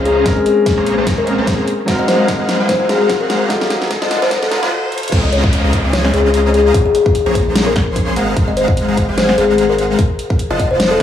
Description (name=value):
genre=future bass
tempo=148 BPM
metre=4/4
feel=swing 55% on 16ths, half-time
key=Db major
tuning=A4 = 438 Hz
part: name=felt-muted upright piano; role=accompaniment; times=0.0-5.1 s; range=F3 to C5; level=-21 LUFS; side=right 1 dB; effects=sidechain pumping, dub echo
part: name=dense compressed supersaw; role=riff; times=0.0-11.0 s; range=Ab3 to C6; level=-19 LUFS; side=equal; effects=sidechain pumping, low-pass filter
part: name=saturated sub bass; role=bass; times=0.0-11.0 s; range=F1 to Db2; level=-20 LUFS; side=equal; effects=sidechain pumping
part: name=riser and downlifter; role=sound effects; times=1.2-8.4 s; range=none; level=-26 LUFS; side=left 1 dB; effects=none
part: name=kalimba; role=melody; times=0.1-11.0 s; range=Ab4 to Eb5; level=-16 LUFS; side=left 4 dB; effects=sidechain pumping, dub echo
part: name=dubstep drum kit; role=drums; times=0.1-11.0 s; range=crash cymbal, hi-hat, snare drum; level=-21 LUFS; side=equal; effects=none
part: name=electronic kick drum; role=drums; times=0.3-11.0 s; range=none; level=-17 LUFS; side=equal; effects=none
room=light reverb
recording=high-pass filter, small room ambience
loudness=-12 LUFS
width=side -10 dB against mid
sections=0.0-5.1 A section; 5.1-11.0 B section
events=build-up 0.0-5.1; drum fill 0.0-4.7, 4.9; filter sweep 0.0-5.1; riser 1.2-5.1; break 4.7-5.1; drop 5.1-11.0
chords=0.3 Bbm9; 1.7 Ab13; 3.5 F7b9; 5.1 Dbmaj13; 6.7 Bbm9; 8.2 Ab13; 10.0 F7b9